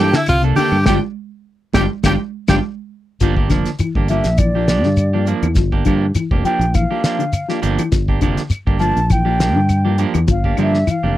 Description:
afrobeat; 102 BPM; 4/4; swing 53% on 16ths; G dorian; A4 = 438 Hz
edgy tenor saxophone; melody; 0.0-2.6 s; E4 to G4; -19 LUFS; equal; slapback echo
warm erhu; second line; 0.0-2.6 s; E5 to G5; -25 LUFS; right 4 dB
mellow electric guitar; arpeggios; 0.0-11.1 s; C3 to G3; -22 LUFS; left 6 dB
electric guitar at the edge of break-up; stabs; 0.0-11.2 s; F3 to A4; -22 LUFS; right 8 dB
fingered electric bass; bass; 0.0-11.2 s; F1 to G2; -17 LUFS; equal
shekere; percussion; 0.0-11.0 s; -20 LUFS; left 1 dB
damped 70s drum kit; drums; 0.1-11.0 s; hi-hat, kick drum, snare drum; -19 LUFS; equal
claves; percussion; 0.3-11.0 s; -32 LUFS; left 2 dB
congas; percussion; 0.6-2.6 s; -24 LUFS; right 11 dB
breathy mellow concert flute; melody; 4.1-11.2 s; D5 to A5; -21 LUFS; equal
little or no reverb; dry, close 1970s-style studio recording; -14 LUFS; side -14 dB against mid
0.0-3.2 A section; 3.2-11.2 B section
band accent 0.9-3.2; drum fill 2.6-3.2; flute solo 3.2-11.2
0.0 Gm9; 3.2 Gm7

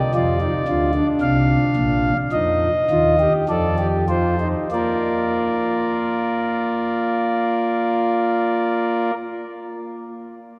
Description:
classical, baroque-style 3-part fugue for pipe organ; 48-57 BPM; 4/4; straight; Bb major; A4 = 438 Hz
pipe organ, principal; solo; 0.0-9.1 s; Bb1 to F5; -20 LUFS; equal
wet cathedral reverb, RT60 5.7 s; -20 LUFS; mono
0.0-4.7 A section; 4.7-9.7 B section
slowing down 0.0-4.7
0.1 Bb; 2.3 F7(no3); 4.7 Bb

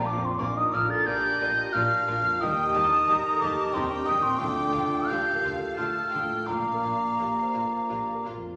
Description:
cinematic, emotional film score for orchestra; 89 BPM; 3/4; uneven beats, rubato; Bb major; A4 = 438 Hz
mellow cor anglais; second line; 0.0-8.3 s; A4 to D5; -40 LUFS; equal
mellow hollow silver concert flute; second line; 0.0-8.3 s; Bb5 to A6; -27 LUFS; equal
rich studio violin section; second line; 0.0-8.3 s; F4 to F5; -46 LUFS; equal
warm clarinet; second line; 0.0-8.6 s; D4 to G4; -42 LUFS; equal
clear studio viola section; accompaniment; 0.0-8.3 s; F3 to G4; -45 LUFS; equal
warm baby grand piano; accompaniment; 0.0-8.6 s; Bb1 to C5; -39 LUFS; equal
mellow French horn section; sustained chords; 0.0-8.2 s; Bb3 to A4; -37 LUFS; equal
warm studio cello section; bass; 0.0-8.3 s; Bb2 to Eb3; -45 LUFS; equal
warm studio double bass section; bass; 0.0-8.3 s; Bb1 to Eb2; -43 LUFS; equal
warm studio violin section; melody; 1.1-8.3 s; D5 to Bb5; -39 LUFS; equal
wet scoring stage reverb, RT60 1.7 s; -26 LUFS; mono
0.0-8.6 A section
0.0 Bb; 2.4 Eb; 4.4 Dm; 6.5 Bb

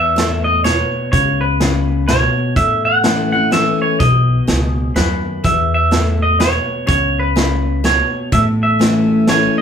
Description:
honky-tonk and classic country; 125 BPM; 3/4; swing 62% on 8ths; A4 = 440 Hz
clean electric guitar; melody; 0.0-9.6 s; B4 to F#5; -17 LUFS; right 2 dB
picked steel-string acoustic guitar; accompaniment; 0.0-9.6 s; E2 to E4; -18 LUFS; left 3 dB
upright bass; bass; 0.0-9.4 s; A1 to E2; -19 LUFS; equal
vintage drum kit; drums; 0.2-9.4 s; hi-hat, kick drum, snare drum; -20 LUFS; right 1 dB
moderate studio reverb, RT60 0.6 s; band playing live in one room; -13 LUFS; side -8 dB against mid
0.0-9.6 A section
0.0 E5; 1.1 Bsus2/C#; 2.6 A; 4.0 B; 5.4 E5; 6.9 Bsus2/C#; 8.3 A

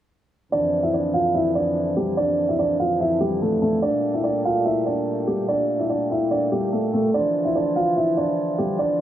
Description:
hip hop; 145 BPM; 4/4; half-time; D minor; A4 = 440 Hz
dark grand piano; melody; 0.5-9.0 s; G3 to F5; -20 LUFS; right 1 dB; low-pass filter
pedal harmonium; sustained chords; 0.5-9.0 s; F2 to A3; -28 LUFS; equal
moderate lush hall reverb, RT60 2.9 s; low-pass filter; -19 LUFS; side -11 dB against mid
0.5-9.0 A section
0.5 Dmadd9; 3.8 Gmadd9; 7.1 Dmadd9

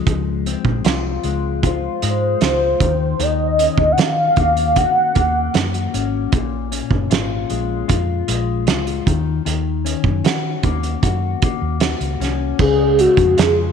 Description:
indie pop, bedroom pop; 77 BPM; 4/4; straight; A4 = 440 Hz
mellow electric guitar; accompaniment; 0.0-13.7 s; Bb2 to Gb4; -23 LUFS; left 14 dB; lush chorus, warbly pitch drift
vintage muted fingered electric bass; bass; 0.1-13.7 s; Gb1 to Eb3; -22 LUFS; equal
loose indie drum kit; drums; 0.1-13.6 s; crash cymbal, hi-hat, kick drum, snare drum; -20 LUFS; right 4 dB
warm velvety synth lead; melody; 1.7-5.9, 12.6-13.7 s; Gb4 to Gb5; -16 LUFS; equal; analog chorus, slapback echo
light reverb, small room ambience; 1960s-style stereo; -15 LUFS; side -7 dB against mid
0.1-12.6 A section; 12.6-13.7 B section
0.1 Dbmaj7; 2.8 Ebm7; 6.3 Bbm7; 9.1 Ebm7; 12.6 Db

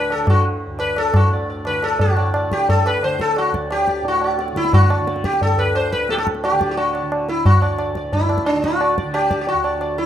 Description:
indian classical, Hindustani; 176 BPM; 4/4; straight; D raga khamaj; A4 = 438 Hz
sitar; melody; 0.0-10.1 s; D4 to D5; -19 LUFS; equal; plate reverb
tanpura; drone; 0.0-10.1 s; D2 to D3; -30 LUFS; right 1 dB; plate reverb
tabla; percussion; 0.1-10.1 s; -19 LUFS; equal
light reverb; rough home demo mix; -16 LUFS; side -10 dB against mid
0.0-2.0 A section; 2.0-10.1 B section

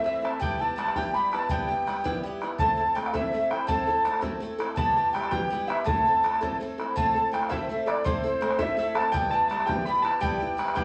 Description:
celtic folk, Celtic jig; 110 BPM (dotted quarters); 6/8; straight; A minor; A4 = 444 Hz
mellow hollow wooden flute; melody; 0.0-10.8 s; C5 to B5; -29 LUFS; equal
concert harp; second line; 0.0-10.8 s; C5 to B5; -35 LUFS; equal
musette accordion; second line; 0.0-10.8 s; C5 to B5; -36 LUFS; equal
picked twelve-string acoustic guitar; accompaniment; 0.0-10.8 s; A2 to A4; -34 LUFS; equal
bodhran; percussion; 0.2-10.8 s; -34 LUFS; equal
wet studio reverb, RT60 0.8 s; -26 LUFS; mono
0.0-7.0 A section; 7.0-10.8 A section
0.4 Em/G; 2.6 Am; 4.8 Em/G; 5.9 Am; 9.1 Em/G

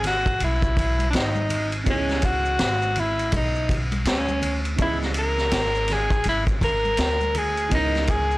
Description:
hip hop, jazz-hop; 82 BPM; 4/4; swing 61% on 16ths; C# dorian; A4 = 440 Hz
breathy alto saxophone; melody; 0.0-8.4 s; C#4 to A#4; -24 LUFS; equal
dark upright piano; accompaniment; 0.0-8.4 s; D#3 to D#5; -34 LUFS; right 6 dB
upright bass; bass; 0.0-8.4 s; G#1 to D2; -26 LUFS; equal; tube saturation
vintage drum kit; drums; 0.0-8.3 s; hi-hat, kick drum, ride cymbal, snare drum; -25 LUFS; equal
congas and maracas; percussion; 0.0-8.4 s; -36 LUFS; left 2 dB
studio reverb; blown-out, overdriven recording, overdrive, faint mains hum; -20 LUFS; side -19 dB against mid
0.0-8.4 A section
0.0 C#m9

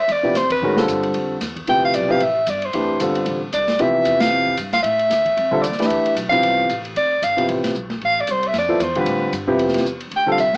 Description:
modal jazz; 227 BPM; 4/4; swing 58% on 8ths; D dorian; A4 = 440 Hz
mellow soprano saxophone; melody; 0.0-10.6 s; B4 to G5; -18 LUFS; equal; cassette tape
upright bass; bass; 0.1-10.6 s; F1 to A2; -31 LUFS; equal
open jazz drum kit; drums; 0.1-10.6 s; hi-hat, kick drum, ride cymbal, snare drum; -28 LUFS; equal; cassette tape
warm grand piano; accompaniment; 0.2-10.4 s; C3 to C5; -20 LUFS; equal; cassette tape
moderate spring reverb, RT60 1.1 s, small room reverb; home recording on cassette, small speaker sound; -16 LUFS; side -27 dB against mid
0.0-10.6 A section
band accent 0.5, 4.2
0.0 Dm9

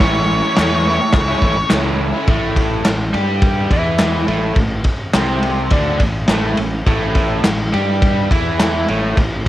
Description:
garage rock duo or trio; 105 BPM; 4/4; straight; A major; A4 = 440 Hz
octave-fuzz lead guitar; melody; 0.0-1.7 s; C#5; -19 LUFS; equal; distortion, cassette tape
overdriven electric guitar; riff; 0.0-9.4 s; A2 to G4; -19 LUFS; equal; cassette tape
fuzz fingered electric bass; bass; 0.0-9.4 s; A1 to G2; -21 LUFS; equal; overdrive
raw garage drum kit; drums; 0.0-9.5 s; crash cymbal, kick drum, ride cymbal, snare drum; -17 LUFS; equal; cassette tape
group handclap; percussion; 0.6-8.7 s; -30 LUFS; left 2 dB
light reverb, studio reverb; home recording on cassette; -14 LUFS; side -14 dB against mid
0.0-2.3 A section; 2.3-9.5 B section
0.0 A; 2.3 A5

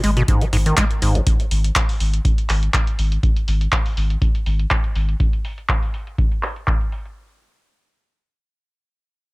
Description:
acid house; 122 BPM; 4/4; swing 53% on 16ths; G# minor; A4 = 439 Hz
acid bass, square; riff; 0.0-1.2 s; G#1 to G#3; -20 LUFS; equal; tape echo
warm sub bass; bass; 0.0-5.1 s; G#1; -18 LUFS; equal; tube saturation, sidechain pumping
punchy analog drum machine; drums; 0.0-7.1 s; handclaps, hi-hat; -24 LUFS; equal; low-pass filter on hats, low-pass filter on perc, low-pass filter on cymbals, low-pass filter on snare, low-pass filter on room
electronic kick drum; drums; 0.3-6.8 s; -20 LUFS; equal
little or no reverb; -17 LUFS; side -24 dB against mid
0.0-7.2 A section
filter sweep on drum 0.0-7.2
0.0 G#5

